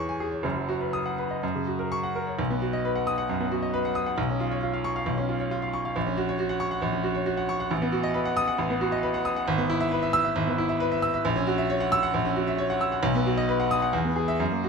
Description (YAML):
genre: classical, virtuoso piano study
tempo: 135 BPM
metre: 4/4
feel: rubato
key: B major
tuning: A4 = 439 Hz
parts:
  - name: clear baby grand piano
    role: solo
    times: 0.0-14.7 s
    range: F#1 to E6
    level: -24 LUFS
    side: equal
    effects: none
room: light reverb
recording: close, detailed microphones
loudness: -24 LUFS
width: side -5 dB against mid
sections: 0.0-2.4 A section; 2.4-14.7 B section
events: none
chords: 0.4 B/F#; 1.4 F#; 2.4 B; 4.2 C#7/B; 6.0 F#/A#; 7.7 B7/A; 9.5 E/G#; 11.2 F#7/A#; 13.0 B; 13.9 E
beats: | 0.44 0.93 1.42 1.91 | 2.39 2.85 3.29 3.73 | 4.18 4.62 5.06 5.51 | 5.96 6.39 6.83 7.27 | 7.71 8.14 8.58 9.03 | 9.47 9.91 10.35 10.80 | 11.25 11.69 12.14 12.59 | 13.03 13.48 13.93 14.40